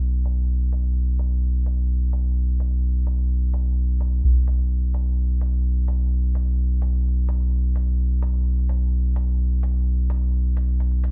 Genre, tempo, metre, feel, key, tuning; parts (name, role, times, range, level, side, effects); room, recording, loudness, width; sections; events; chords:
dub techno; 128 BPM; 4/4; straight; A4 = 441 Hz
soft dub sub bass; bass; 0.0-11.1 s; B1; -19 LUFS; equal
electronic hi-hat; drums; 0.3-11.1 s; -50 LUFS; equal
little or no reverb; played on a big sound system in a bare room, large studio reverb, vinyl crackle, low-pass filter; -19 LUFS; side -38 dB against mid
0.0-11.1 A section
filter sweep 0.0-11.1